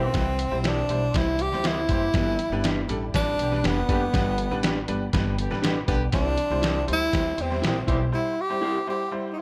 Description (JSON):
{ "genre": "uptempo 1960s-style soul", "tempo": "120 BPM", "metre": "4/4", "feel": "straight", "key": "unclear", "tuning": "A4 = 440 Hz", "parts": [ { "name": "breathy tenor saxophone", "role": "melody", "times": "0.0-9.4 s", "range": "B3 to G4", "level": "-29 LUFS", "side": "equal", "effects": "tape echo" }, { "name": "warm horn section", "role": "second line", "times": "0.0-9.4 s", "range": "D3 to G4", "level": "-38 LUFS", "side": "equal", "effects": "none" }, { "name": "bright upright piano", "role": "accompaniment", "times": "0.0-9.3 s", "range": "G3 to C5", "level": "-34 LUFS", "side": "equal", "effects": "none" }, { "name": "mellow tonewheel organ", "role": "sustained chords", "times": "0.0-9.4 s", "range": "D5 to C6", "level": "-44 LUFS", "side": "equal", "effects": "none" }, { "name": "electric guitar through a small old amp", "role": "stabs", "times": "0.0-8.8 s", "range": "D4 to C5", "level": "-34 LUFS", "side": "equal", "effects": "none" }, { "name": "upright bass", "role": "bass", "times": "0.0-8.1 s", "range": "F1 to E2", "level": "-31 LUFS", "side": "equal", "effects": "none" }, { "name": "lo-fi sampler-style drum kit", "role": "drums", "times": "0.1-8.0 s", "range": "hi-hat, kick drum, snare drum", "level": "-29 LUFS", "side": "equal", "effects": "none" } ], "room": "light reverb", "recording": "none", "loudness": "-25 LUFS", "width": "mono", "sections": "0.0-9.4 A section", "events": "tenor saxophone solo 0.0-9.4; break 8.1-9.4", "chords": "0.0 C; 2.1 G; 6.1 C" }